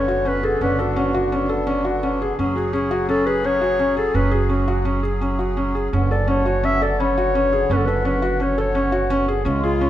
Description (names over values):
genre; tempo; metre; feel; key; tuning
contemporary instrumental, chamber music in an uneven meter; 170 BPM; 5/4; straight; unclear; A4 = 438 Hz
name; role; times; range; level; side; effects
dark clarinet; melody; 0.0-9.9 s; E#4 to E5; -22 LUFS; left 2 dB; none
hand-pumped harmonium; sustained chords; 0.0-9.9 s; C#3 to G#4; -26 LUFS; left 2 dB; none
felt-muted upright piano; arpeggios; 0.0-9.9 s; C#4 to A4; -22 LUFS; equal; none
upright bass; bass; 0.0-9.9 s; F#1 to C#2; -24 LUFS; right 2 dB; none
large celesta; texture; 6.3-7.6 s; A5 to B5; -31 LUFS; left 4 dB; none
room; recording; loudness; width
moderate recital hall reverb, RT60 1.5 s; none; -18 LUFS; side -12 dB against mid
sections
0.0-9.9 A section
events
none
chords
0.0 Bmadd9/F#; 2.4 C#sus4/F#; 5.9 Bmadd9/F#